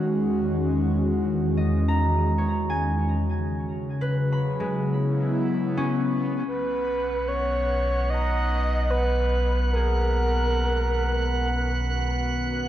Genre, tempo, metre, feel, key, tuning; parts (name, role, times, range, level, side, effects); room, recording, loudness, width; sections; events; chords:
ambient; 74 BPM; 4/4; straight; B major; A4 = 439 Hz
airy breathy pad; sustained chords; 0.0-12.7 s; E2 to F#4; -25 LUFS; equal; chorus
concert harp; arpeggios; 1.6-12.1 s; G#3 to B5; -31 LUFS; equal; diffuse ambient delay
breathy flute-like synth lead; melody; 6.5-12.1 s; A#4 to D#5; -27 LUFS; right 1 dB; chorus, diffuse ambient delay
warm sub bass; bass; 6.5-12.7 s; B1; -25 LUFS; equal
organ-like drone; drone; 10.7-12.7 s; B2 to F#4; -42 LUFS; left 1 dB
drifting glass-harmonics texture; texture; 6.8-12.7 s; B3 to F#5; -30 LUFS; right 1 dB; chorus, built-in reverb
moderate concert hall reverb, RT60 2.0 s; cassette tape; -22 LUFS; side -12 dB against mid
0.0-6.5 A section; 6.5-12.7 B section
filter sweep on analog synth pad 0.0-6.5
0.0 Emaj7; 3.2 C#m7; 6.5 Bmaj7